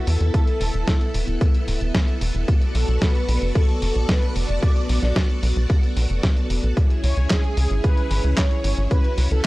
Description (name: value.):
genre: italo disco.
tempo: 112 BPM.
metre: 4/4.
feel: straight.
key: B dorian.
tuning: A4 = 439 Hz.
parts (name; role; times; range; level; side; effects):
mellow synth brass; melody; 0.0-9.5 s; G#4 to D5; -29 LUFS; equal; chorus, phaser, analog delay.
string machine, full ensemble; sustained chords; 0.0-9.5 s; B3 to C#6; -29 LUFS; equal; ensemble chorus.
tight sequencer bass; bass; 0.1-9.4 s; D1 to E2; -20 LUFS; equal; none.
dusty soul sampler-style drum kit; drums; 0.1-9.4 s; handclaps, hi-hat, snare drum; -27 LUFS; equal; none.
electronic kick drum; drums; 0.3-9.0 s; none; -19 LUFS; equal; overdrive.
room: little or no reverb.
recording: dry, gritty hardware recording, transformer saturation, cassette tape.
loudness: -18 LUFS.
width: side -19 dB against mid.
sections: 0.0-9.5 A section.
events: none.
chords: 0.0 Esus4; 2.5 Bm7; 6.8 C#m.